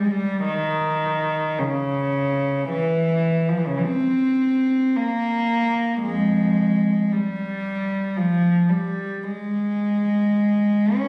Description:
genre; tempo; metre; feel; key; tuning
classical, free, expressive piece for unaccompanied cello; 48-57 BPM; 3/4; rubato; Ab major; A4 = 440 Hz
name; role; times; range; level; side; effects
warm cello; solo; 0.0-11.1 s; F2 to Db4; -22 LUFS; equal; none
room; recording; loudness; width
wet recital hall reverb, RT60 1.3 s; recorded on a phone in the room, club reverb, compression; -22 LUFS; mono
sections
0.0-11.1 A section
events
none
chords
none

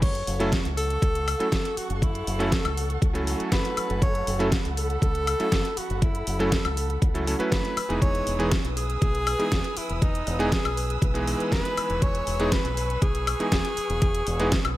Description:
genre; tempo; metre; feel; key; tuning
nu-disco, nu disco; 120 BPM; 4/4; straight; F# dorian; A4 = 441 Hz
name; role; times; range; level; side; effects
clear tenor saxophone; melody; 0.0-14.8 s; D#4 to C#5; -30 LUFS; equal; tape echo
warm studio string section; sustained chords; 0.0-14.8 s; A4 to E6; -36 LUFS; right 1 dB; sidechain pumping
fingered electric bass with an envelope filter; bass; 0.0-14.8 s; E1 to C#2; -29 LUFS; equal; sidechain pumping
electronic kick drum; drums; 0.0-14.6 s; none; -25 LUFS; equal; overdrive
pop drum kit; drums; 0.0-14.7 s; crash cymbal, hi-hat, snare drum, woodblock; -30 LUFS; equal; overdrive
bright electric grand piano; accompaniment; 0.4-14.5 s; E3 to B4; -29 LUFS; right 1 dB; vintage 12-bit sampler grit, sidechain pumping
room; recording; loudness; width
light reverb; none; -22 LUFS; side -16 dB against mid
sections
0.0-14.8 A section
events
none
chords
0.0 F#m7; 7.8 Emaj7

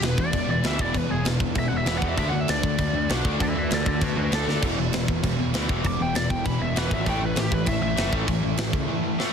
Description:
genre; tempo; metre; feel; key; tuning
punk rock; 196 BPM; 4/4; straight; unclear; A4 = 440 Hz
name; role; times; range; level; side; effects
biting lead guitar; melody; 0.0-8.1 s; F#4 to D6; -30 LUFS; equal; overdrive, tape echo
biting overdriven guitar; riff; 0.0-9.3 s; E2 to D4; -33 LUFS; equal; none
crunchy overdriven guitar; riff; 0.0-9.3 s; E2 to D4; -30 LUFS; right 11 dB; none
overdriven electric guitar; riff; 0.0-9.3 s; E2 to D4; -29 LUFS; left 12 dB; none
fuzz picked electric bass; bass; 0.0-8.9 s; E1 to E2; -28 LUFS; equal; overdrive
tight metal drum kit; drums; 0.0-9.3 s; crash cymbal, kick drum, snare drum; -27 LUFS; equal; soft clipping on kick
room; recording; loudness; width
light reverb; dense, heavily limited modern master; -22 LUFS; side -7 dB against mid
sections
0.0-9.3 A section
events
lead electric guitar solo 0.0-9.3; drum fill 4.5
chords
0.0 E5; 2.2 D5; 4.6 E5; 7.1 A5

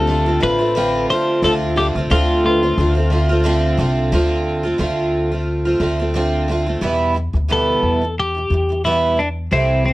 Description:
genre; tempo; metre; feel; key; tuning
acoustic pop; 89 BPM; 4/4; swing 55% on 16ths; unclear; A4 = 440 Hz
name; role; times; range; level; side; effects
twelve-string electric guitar; melody; 0.0-9.9 s; C4 to C5; -20 LUFS; left 2 dB; none
felt-muted upright piano; accompaniment; 0.0-4.1 s; A3 to C5; -26 LUFS; left 2 dB; none
picked twelve-string acoustic guitar; accompaniment; 0.0-9.9 s; E2 to G4; -18 LUFS; right 2 dB; none
upright bass; bass; 0.0-9.9 s; A1 to E2; -20 LUFS; left 1 dB; none
room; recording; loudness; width
light reverb; worn, warbling old tape, cassette tape, warbly pitch drift; -15 LUFS; side -18 dB against mid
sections
0.0-4.1 A section; 4.1-6.8 B section; 6.8-9.9 C section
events
none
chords
0.0 Dm7; 6.8 Em

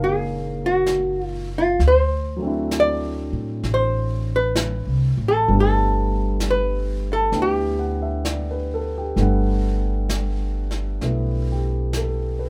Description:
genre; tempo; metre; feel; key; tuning
jazz ballad; 65 BPM; 4/4; swing 68% on 8ths; G major; A4 = 444 Hz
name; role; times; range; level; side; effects
archtop guitar, miked and amplified; melody; 0.0-12.0 s; F4 to D5; -23 LUFS; equal; none
warm concert grand piano; accompaniment; 0.0-12.5 s; A#2 to F#5; -29 LUFS; equal; none
upright bass; bass; 0.0-12.5 s; F#1 to A2; -25 LUFS; equal; none
jazz brush drum kit; drums; 0.9-12.5 s; brushed snare drum, hi-hat, snare drum; -32 LUFS; equal; none
room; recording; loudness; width
light reverb; none; -22 LUFS; mono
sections
0.0-12.5 A section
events
none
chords
0.0 Bmaj13 (rootless); 1.8 D7; 5.5 Gmaj9

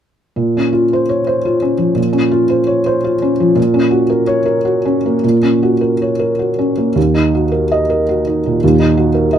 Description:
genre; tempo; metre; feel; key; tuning
neoclassical minimalist piano; 103-114 BPM; 3/4; rubato; Bb minor; A4 = 440 Hz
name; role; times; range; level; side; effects
felt-muted upright piano; solo; 0.4-9.4 s; Eb2 to Eb5; -12 LUFS; equal; none
room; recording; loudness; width
light reverb; minimal, uncompressed stereo recording; -12 LUFS; side -9 dB against mid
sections
0.4-9.4 A section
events
none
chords
0.4 Bbmadd9; 3.6 Gb/Bb; 7.0 Ebm

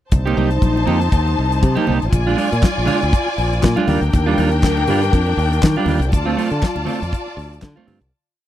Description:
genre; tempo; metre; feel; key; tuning
disco; 120 BPM; 4/4; swing 56% on 16ths; C dorian; A4 = 440 Hz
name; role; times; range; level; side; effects
warm studio string section; second line; 0.1-8.1 s; D4 to A5; -21 LUFS; left 2 dB; none
clean electric guitar; accompaniment; 0.1-8.0 s; G3 to G4; -20 LUFS; right 6 dB; none
modern bright fingered electric bass; bass; 0.1-8.1 s; A1 to Eb3; -19 LUFS; equal; none
damped 70s drum kit; drums; 0.1-8.1 s; handclaps, hi-hat, kick drum, snare drum; -16 LUFS; equal; none
congas; percussion; 0.1-8.0 s; none; -26 LUFS; left 4 dB; none
room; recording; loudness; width
little or no reverb; dry, close 1970s-style studio recording; -15 LUFS; side -12 dB against mid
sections
0.1-8.1 breakdown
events
fade-out 6.1-8.1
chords
0.1 Cm7; 2.1 Bb7; 3.9 Ebmaj9; 6.1 Dm7

